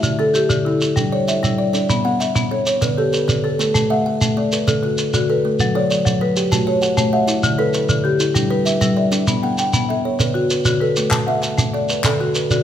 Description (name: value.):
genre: southern african traditional, mbira-style interlocking cycle.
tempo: 130 BPM (dotted quarters).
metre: 12/8.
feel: straight.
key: unclear.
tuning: A4 = 435 Hz.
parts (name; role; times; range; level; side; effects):
buzzing kalimba; arpeggios; 0.0-12.6 s; D3 to G5; -21 LUFS; right 4 dB; none.
marimba with medium hard mallets; arpeggios; 0.0-12.6 s; D3 to G5; -19 LUFS; left 4 dB; none.
shekere; percussion; 0.0-12.6 s; none; -21 LUFS; right 2 dB; none.
group handclap; percussion; 11.1-12.2 s; none; -25 LUFS; left 3 dB; none.
room: wet recital hall reverb, RT60 1.6 s.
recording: none.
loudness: -15 LUFS.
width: side -10 dB against mid.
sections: 0.0-3.7 A section; 3.7-12.6 B section.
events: none.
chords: 0.0 D5; 1.0 G5; 1.9 Bm; 2.8 D5; 3.7 A5; 4.7 D; 5.6 F#m; 6.5 A; 7.4 D; 8.4 G; 9.3 Bm; 10.2 D; 11.1 A5; 12.0 D.